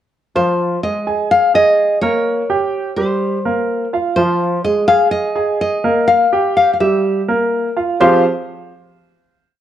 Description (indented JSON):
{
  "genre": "latin",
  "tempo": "125 BPM",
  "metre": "4/4",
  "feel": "straight",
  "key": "F minor",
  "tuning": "A4 = 440 Hz",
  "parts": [
    { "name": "nylon-string guitar", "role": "melody", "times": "0.4-8.2 s", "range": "C5 to F5", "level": "-15 LUFS", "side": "left 2 dB", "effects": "none" },
    { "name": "warm baby grand piano", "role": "arpeggios", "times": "0.4-8.2 s", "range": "F3 to Ab5", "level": "-16 LUFS", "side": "right 2 dB", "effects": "none" }
  ],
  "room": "moderate large studio reverb, RT60 1.2 s",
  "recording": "worn, warbling old tape, cassette tape, warbly pitch drift",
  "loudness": "-13 LUFS",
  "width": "side -11 dB against mid",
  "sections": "0.3-8.0 montuno (vamp); 8.0-9.6 final chord",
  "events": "none",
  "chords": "0.3 Fm; 1.3 Absus2; 2.3 Gdim; 3.2 C5; 4.2 Fm; 5.1 Absus2; 6.1 Gm7; 7.0 Gm6; 8.0 Fmadd9",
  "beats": "| 0.35 0.83 1.30 1.78 | 2.25 2.73 3.21 3.69 | 4.16 4.64 5.12 5.60 | 6.08 6.56 7.04 7.52 | 8.00"
}